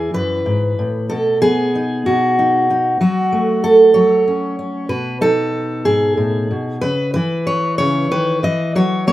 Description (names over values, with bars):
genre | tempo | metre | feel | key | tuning
folk, solo fingerstyle acoustic guitar | 62 BPM (dotted quarters) | 6/8 | straight | unclear | A4 = 444 Hz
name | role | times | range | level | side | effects
fingerpicked steel-string acoustic guitar | solo | 0.0-9.1 s | E2 to D#5 | -14 LUFS | equal | slapback echo
room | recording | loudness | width
little or no reverb | recorded outdoors, with no room sound | -14 LUFS | side -15 dB against mid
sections
0.0-9.1 A section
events
none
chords
0.0 E; 1.1 B; 3.0 F#m; 4.9 B7; 6.8 C#m7